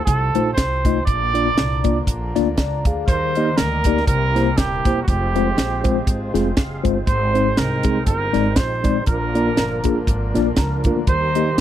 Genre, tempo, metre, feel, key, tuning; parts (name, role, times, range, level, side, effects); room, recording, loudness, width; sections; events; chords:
uptempo gospel; 120 BPM; 4/4; swing 55% on 8ths; A4 = 440 Hz
warm trumpet; melody; 0.0-11.6 s; Gb4 to D5; -22 LUFS; right 3 dB
pedal harmonium; sustained chords; 0.0-11.6 s; Bb2 to Eb4; -33 LUFS; left 1 dB
upright bass; bass; 0.1-11.6 s; Eb1 to Eb2; -24 LUFS; equal
crisp fusion drum kit; drums; 0.1-11.6 s; hi-hat, kick drum, snare drum; -19 LUFS; equal
mellow tine electric piano; accompaniment; 0.3-11.6 s; Ab2 to Bb5; -21 LUFS; left 3 dB; medium stereo tremolo
tonewheel organ; sustained chords; 3.1-11.6 s; Eb3 to F5; -29 LUFS; right 3 dB; fast rotary speaker, chorus vibrato
small room reverb; dry, close 1970s-style studio recording; -16 LUFS; side -11 dB against mid
0.0-11.6 A section
tine electric piano fill 10.3-11.1
0.0 F7; 1.1 Bb; 3.1 Eb; 4.1 C7; 5.1 Fm; 7.1 Ab; 9.1 Bb; 11.1 Eb